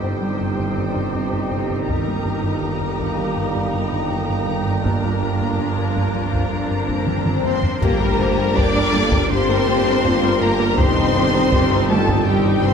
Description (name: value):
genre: cinematic, hybrid orchestral and electronic film score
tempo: 81 BPM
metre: 4/4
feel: straight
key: G minor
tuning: A4 = 439 Hz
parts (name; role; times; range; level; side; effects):
- warm symphonic violin section; second line; 0.0-12.7 s; G4 to Bb5; -26 LUFS; left 4 dB; none
- warm symphonic viola section; accompaniment; 0.0-12.7 s; Eb3 to Bb4; -27 LUFS; left 1 dB; low-pass filter
- dark French horn section; sustained chords; 0.0-12.7 s; Bb3 to C5; -27 LUFS; left 6 dB; low-pass filter
- overtone-sweeping drone; sustained chords; 0.0-12.7 s; Eb3 to Bb4; -27 LUFS; left 1 dB; chorus, built-in reverb, low-pass filter
- harp-like synth pluck; arpeggios; 0.0-12.7 s; C3 to Bb4; -30 LUFS; right 3 dB; chorus, low-pass filter, tape echo
- rubbery square bass; riff; 0.0-12.7 s; G2 to G3; -26 LUFS; left 2 dB; low-pass filter
- dark symphonic double bass section; bass; 0.0-12.7 s; G1; -28 LUFS; right 5 dB; none
- mellow tuba; bass; 0.0-12.7 s; G1; -26 LUFS; right 5 dB; none
- warm symphonic cello section; bass; 0.0-12.7 s; G2 to D4; -26 LUFS; right 4 dB; none
- taiko ensemble; drums; 1.9-12.7 s; none; -24 LUFS; equal; none
- swell and impact; sound effects; 6.5-10.8 s; none; -28 LUFS; left 2 dB; none
- rich symphonic violin section; melody; 7.5-12.7 s; G5 to D6; -24 LUFS; left 1 dB; low-pass filter
room: moderate concert hall reverb, RT60 2.0 s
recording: none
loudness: -17 LUFS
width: side -6 dB against mid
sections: 0.0-7.8 A section; 7.8-12.7 B section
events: filter sweep 0.0-7.8; swell 6.5-7.8; drum fill 7.1-7.8; impact 7.8-10.8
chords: 0.0 Cm/G; 1.9 Eb/G; 4.9 Bb/G; 7.8 Gm; 10.8 Cm/G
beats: 0.41 1.15 | 1.89 2.63 3.38 4.12 | 4.86 5.60 6.34 7.08 | 7.82 8.56 9.30 10.04 | 10.78 11.52 12.26